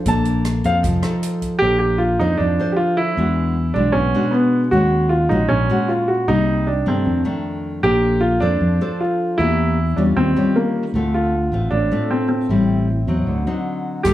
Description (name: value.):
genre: bossa nova.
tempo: 154 BPM.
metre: 4/4.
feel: straight.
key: Bb major.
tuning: A4 = 440 Hz.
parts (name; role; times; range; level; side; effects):
nylon-string guitar; accompaniment; 0.0-14.1 s; F2 to C5; -21 LUFS; left 2 dB; none.
warm grand piano; melody; 0.1-14.1 s; Bb3 to A5; -19 LUFS; right 1 dB; none.
fingered electric bass; bass; 0.1-14.1 s; F1 to G2; -20 LUFS; equal; none.
open jazz drum kit; drums; 0.1-1.5, 14.0-14.1 s; hi-hat, kick drum, rim click; -26 LUFS; right 1 dB; none.
room: light reverb.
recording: small room reverb.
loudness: -16 LUFS.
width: side -13 dB against mid.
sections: 0.0-1.6 A section; 1.6-14.1 B section.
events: grand piano solo 0.0-1.6.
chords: 0.0 Bbmaj9; 0.8 F7; 1.6 Bbmaj9; 3.2 E9; 4.7 Ebm7; 6.3 Cm7; 7.1 F6; 7.8 Bbmaj9; 9.4 Em7b5; 10.2 Eb9; 10.9 Dm7; 12.5 Am7; 13.3 D7b9.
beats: | 0.06 0.45 0.84 1.23 | 1.61 2.00 2.39 2.78 | 3.17 3.56 3.94 4.33 | 4.72 5.11 5.50 5.89 | 6.28 6.67 7.05 7.44 | 7.83 8.22 8.61 8.99 | 9.38 9.77 10.16 10.55 | 10.94 11.32 11.71 12.10 | 12.49 12.88 13.27 13.65 | 14.04.